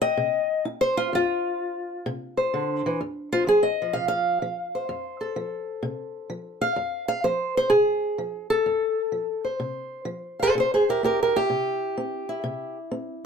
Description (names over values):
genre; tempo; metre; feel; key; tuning
acoustic country blues, solo or duo; 127 BPM; 4/4; swing 68% on 8ths; F major; A4 = 440 Hz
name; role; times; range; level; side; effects
fingerpicked old ladder-braced acoustic guitar; solo; 0.0-13.3 s; F2 to G5; -23 LUFS; equal; none
room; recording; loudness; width
light reverb; none; -23 LUFS; side -6 dB against mid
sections
0.0-3.0 A section; 3.0-13.3 A section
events
steel-string acoustic guitar solo 0.0-13.3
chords
0.0 C; 1.1 N.C.; 2.0 C; 3.0 F; 10.5 C